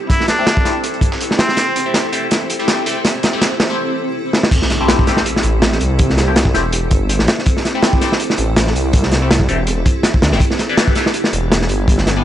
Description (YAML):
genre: drum and bass, jungle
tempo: 163 BPM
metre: 4/4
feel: swing 55% on 16ths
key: A minor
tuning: A4 = 441 Hz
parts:
  - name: trumpet with straight mute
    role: melody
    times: 0.1-1.9 s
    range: C4 to E4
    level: -19 LUFS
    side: equal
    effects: dub echo
  - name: crunchy breakbeat drum kit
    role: drums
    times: 0.1-12.2 s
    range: crash cymbal, hi-hat, kick drum, snare drum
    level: -15 LUFS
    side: equal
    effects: none
  - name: dusty soul sampler-style drum kit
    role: drums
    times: 0.1-3.7 s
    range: hi-hat, snare drum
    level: -27 LUFS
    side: right 3 dB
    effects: none
  - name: band-passed chord stab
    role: stabs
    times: 0.4-12.2 s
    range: E3 to G4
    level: -23 LUFS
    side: left 3 dB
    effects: phaser, lush chorus, dub echo
  - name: impact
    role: sound effects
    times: 4.5-6.0 s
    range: none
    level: -24 LUFS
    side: equal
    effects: none
  - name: detuned saw bass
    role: bass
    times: 5.4-12.2 s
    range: E1 to D2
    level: -17 LUFS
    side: equal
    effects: none
room: light reverb, small room ambience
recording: dry, gritty hardware recording, nothing above 10.8 kHz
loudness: -13 LUFS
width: side -11 dB against mid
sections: 0.0-4.5 A section; 4.5-12.2 B section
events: build-up 0.0-4.5; drum fill 1.6-3.8, 4.3; drop 4.5-12.2; impact 4.5-6.0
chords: 0.0 Am7; 10.4 Em7